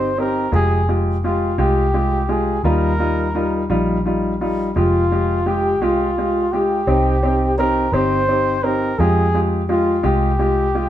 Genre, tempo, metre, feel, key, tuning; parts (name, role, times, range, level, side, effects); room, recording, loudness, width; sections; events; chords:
pop; 57 BPM (dotted quarters); 6/8; straight; F minor; A4 = 439 Hz
mellow flugelhorn; melody; 0.0-10.9 s; F4 to C5; -20 LUFS; equal
clear upright piano; accompaniment; 0.0-10.9 s; G3 to G4; -20 LUFS; equal
vintage muted fingered electric bass; bass; 0.0-10.9 s; F1 to F2; -21 LUFS; equal
moderate stone room reverb, RT60 0.9 s; band playing live in one room; -16 LUFS; side -12 dB against mid
0.0-10.9 A section
0.0 Cm; 0.5 Fmadd9; 2.6 Ebadd9; 4.8 Fmadd9; 6.9 Cm; 9.0 Fmadd9